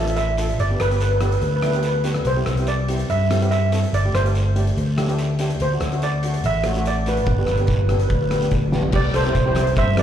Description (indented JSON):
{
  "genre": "calypso",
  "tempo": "144 BPM",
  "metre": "4/4",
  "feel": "straight",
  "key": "C major",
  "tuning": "A4 = 437 Hz",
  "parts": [
    { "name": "steel pan", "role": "melody", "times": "0.0-10.0 s", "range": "G4 to E5", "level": "-24 LUFS", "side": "right 2 dB", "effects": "slapback echo, tape echo" },
    { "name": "steel pan", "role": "accompaniment", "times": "0.0-10.0 s", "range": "A3 to A4", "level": "-28 LUFS", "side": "equal", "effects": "slapback echo" },
    { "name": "fingered electric bass", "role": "bass", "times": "0.0-10.0 s", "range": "G1 to G2", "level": "-20 LUFS", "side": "equal", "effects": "none" },
    { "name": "oversized low-tuned drum kit", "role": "drums", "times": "0.1-10.0 s", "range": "crash cymbal, hi-hat, kick drum, rim click, snare drum, toms", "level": "-26 LUFS", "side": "equal", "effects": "none" },
    { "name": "guiro", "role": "percussion", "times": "0.2-10.0 s", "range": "none", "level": "-38 LUFS", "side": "right 2 dB", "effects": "slapback echo" }
  ],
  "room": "light reverb",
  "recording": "live gig heard through the venue's PA, club reverb",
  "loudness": "-18 LUFS",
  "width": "side -10 dB against mid",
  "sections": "0.0-8.9 A section; 8.9-10.0 B section",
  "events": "drum fill 8.7",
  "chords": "0.0 Dm; 0.6 G; 2.3 Cadd9; 3.9 Gsus2; 5.6 D; 7.3 G; 8.9 C"
}